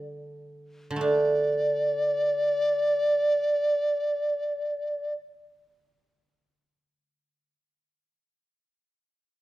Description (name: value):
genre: chinese traditional, Chinese chamber ensemble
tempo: free time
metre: none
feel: none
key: unclear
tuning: A4 = 439 Hz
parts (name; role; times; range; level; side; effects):
- guzheng; accompaniment; 0.0-7.5 s; D3 to D4; -29 LUFS; right 3 dB; none
- mellow large dizi; melody; 1.0-5.1 s; D5; -24 LUFS; right 1 dB; none
room: moderate recital hall reverb, RT60 1.4 s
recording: none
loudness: -23 LUFS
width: side -16 dB against mid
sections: 0.0-1.0 A section; 1.0-5.4 B section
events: slowing down 0.0-1.0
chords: none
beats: free time